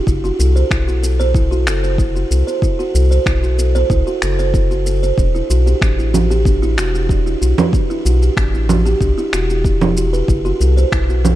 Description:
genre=organic downtempo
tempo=94 BPM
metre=4/4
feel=straight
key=unclear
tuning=A4 = 441 Hz
part: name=buzzing kalimba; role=arpeggios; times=0.0-11.4 s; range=D4 to C5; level=-19 LUFS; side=right 2 dB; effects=tape echo
part: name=round analog bass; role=bass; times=0.1-11.4 s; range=E1 to C2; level=-15 LUFS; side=equal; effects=sidechain pumping
part: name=electronic kick drum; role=drums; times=0.1-11.1 s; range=none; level=-17 LUFS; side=equal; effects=none
part: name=electronic shaker, finger snaps and congas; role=drums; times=0.1-11.4 s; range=none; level=-20 LUFS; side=right 3 dB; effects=none
room=light reverb, digital ambience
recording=dark, warm production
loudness=-13 LUFS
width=side -14 dB against mid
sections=0.0-11.4 A section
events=none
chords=0.1 F#m7b5; 5.2 Em11; 10.3 F#m7b5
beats=| 0.07 0.71 1.35 1.99 | 2.63 3.26 3.90 4.54 | 5.18 5.82 6.46 7.09 | 7.73 8.37 9.01 9.65 | 10.29 10.92

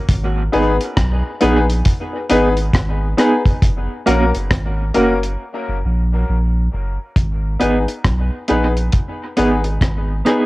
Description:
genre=dub reggae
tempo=68 BPM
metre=4/4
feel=swing 62% on 16ths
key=G# minor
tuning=A4 = 440 Hz
part: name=warm sub bass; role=bass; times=0.1-10.2 s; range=F#1 to B1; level=-18 LUFS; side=equal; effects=none
part: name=deep reggae drum kit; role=drums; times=0.1-10.5 s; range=hi-hat, kick drum, rim click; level=-18 LUFS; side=equal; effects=cassette tape
part: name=mellow electric guitar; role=accompaniment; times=0.5-10.4 s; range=A#3 to G#4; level=-20 LUFS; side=right 3 dB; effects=tremolo, cassette tape, dub echo
part: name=warm upright piano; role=stabs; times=0.5-10.5 s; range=A#3 to B4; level=-20 LUFS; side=left 3 dB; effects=cassette tape, dub echo
room=light reverb, small room ambience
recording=home recording on cassette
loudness=-15 LUFS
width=side -20 dB against mid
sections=0.0-7.2 A section; 7.2-10.5 B section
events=break 5.4-7.2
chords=0.1 G#m; 3.6 F#; 7.2 G#m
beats=| 0.09 0.97 1.86 2.74 | 3.62 4.51 5.39 6.28 | 7.16 8.04 8.93 9.82

